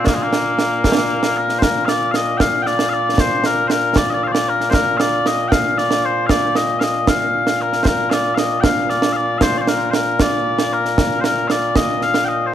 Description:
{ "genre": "scottish traditional, Scottish pipe music", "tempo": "77 BPM (dotted quarters)", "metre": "6/8", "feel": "straight", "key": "Bb major", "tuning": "A4 = 441 Hz", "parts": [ { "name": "mellow small bagpipes", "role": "melody", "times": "0.0-12.5 s", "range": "Bb2 to G5", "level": "-17 LUFS", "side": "left 2 dB", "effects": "none" }, { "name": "concert snare drum and concert bass drum", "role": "drums", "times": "0.1-12.3 s", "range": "none", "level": "-19 LUFS", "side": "right 2 dB", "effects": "none" } ], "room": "moderate concert hall reverb, RT60 1.9 s", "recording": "faint mains hum", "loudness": "-15 LUFS", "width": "side -10 dB against mid", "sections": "0.0-1.6 A section; 1.6-12.5 B section", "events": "none", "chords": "none" }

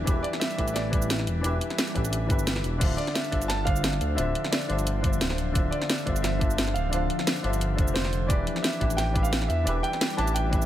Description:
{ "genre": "liquid drum and bass", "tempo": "175 BPM", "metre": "4/4", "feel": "straight", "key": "D dorian", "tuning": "A4 = 440 Hz", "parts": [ { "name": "felt-muted upright piano", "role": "accompaniment", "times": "0.0-10.7 s", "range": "D3 to F5", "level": "-31 LUFS", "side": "left 2 dB", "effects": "none" }, { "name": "ethereal airy pad", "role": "sustained chords", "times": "0.0-10.7 s", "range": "F3 to E5", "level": "-36 LUFS", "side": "left 1 dB", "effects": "ensemble chorus, built-in reverb, tremolo, sidechain pumping" }, { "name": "smooth synth bass", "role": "bass", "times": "0.0-10.7 s", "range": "D1 to E2", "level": "-28 LUFS", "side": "equal", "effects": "tube saturation" }, { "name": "drum and bass drum kit", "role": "drums", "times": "0.1-10.7 s", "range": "crash cymbal, hi-hat, shaker, snare drum", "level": "-29 LUFS", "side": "equal", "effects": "none" }, { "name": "electronic kick drum", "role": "drums", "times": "0.1-10.6 s", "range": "none", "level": "-26 LUFS", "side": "equal", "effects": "none" }, { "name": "dark baby grand piano", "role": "melody", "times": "0.2-10.7 s", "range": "C5 to A5", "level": "-33 LUFS", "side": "right 3 dB", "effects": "digital delay" } ], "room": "light reverb", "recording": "none", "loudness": "-24 LUFS", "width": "side -12 dB against mid", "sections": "0.0-10.7 A section", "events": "kick drops out 2.5-2.8", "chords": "0.0 Em7; 2.8 Dm9; 8.3 Em7" }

